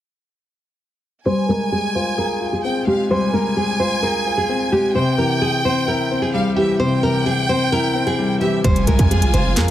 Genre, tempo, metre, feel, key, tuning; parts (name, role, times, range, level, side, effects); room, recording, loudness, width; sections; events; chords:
hip hop, trap; 130 BPM; 4/4; half-time; F harmonic minor; A4 = 440 Hz
nylon-string guitar; melody; 1.3-9.7 s; G4 to C5; -21 LUFS; right 1 dB; low-pass filter, analog delay
warm symphonic violin section; second line; 1.3-9.7 s; E5 to Ab5; -23 LUFS; right 2 dB; analog delay
dark concert grand piano; accompaniment; 1.3-9.7 s; C3 to Ab4; -20 LUFS; left 2 dB; low-pass filter
dark studio string section; sustained chords; 8.6-9.7 s; F3 to F4; -28 LUFS; left 1 dB
hard-hitting 808-style bass; bass; 8.6-9.7 s; F1 to F2; -17 LUFS; right 1 dB
trap drum kit; drums; 8.6-9.7 s; handclaps, hi-hat, kick drum, snare drum; -18 LUFS; right 1 dB
impact; sound effects; 8.6-9.7 s; -24 LUFS; right 1 dB
light reverb, small room ambience; echo-heavy mix; -16 LUFS; side -12 dB against mid
1.3-8.6 A section; 8.6-9.7 B section
filter sweep 1.3-8.6; impact 8.6-9.7
1.3 Fmadd9; 5.0 C; 8.6 Fmadd9